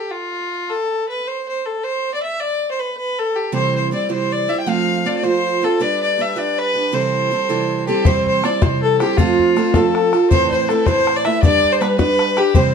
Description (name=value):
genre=celtic folk, Celtic jig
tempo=106 BPM (dotted quarters)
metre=6/8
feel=straight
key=C major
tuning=A4 = 445 Hz
part: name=clear fiddle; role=melody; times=0.0-12.7 s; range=F4 to G5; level=-19 LUFS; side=left 1 dB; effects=none
part: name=picked steel-string acoustic guitar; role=accompaniment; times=3.5-12.7 s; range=A2 to C5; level=-19 LUFS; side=right 5 dB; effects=none
part: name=mellow hollow baroque flute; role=second line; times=7.9-12.7 s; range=F4 to E5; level=-21 LUFS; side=left 6 dB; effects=none
part: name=bodhran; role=percussion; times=8.1-12.6 s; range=none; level=-18 LUFS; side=left 3 dB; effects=none
room=moderate studio reverb, RT60 0.5 s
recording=dark, warm production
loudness=-15 LUFS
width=side -6 dB against mid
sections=0.0-8.1 A section; 8.1-12.7 A section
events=none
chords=0.0 N.C.; 3.5 C; 4.7 F; 5.8 G; 6.9 C6; 8.1 C; 9.2 F; 10.3 Amadd9; 11.4 G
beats=| 0.12 0.69 | 1.25 1.82 | 2.39 2.96 | 3.53 4.10 | 4.67 5.23 | 5.80 6.36 | 6.93 7.49 | 8.06 8.62 | 9.18 9.75 | 10.31 10.87 | 11.43 11.99 | 12.56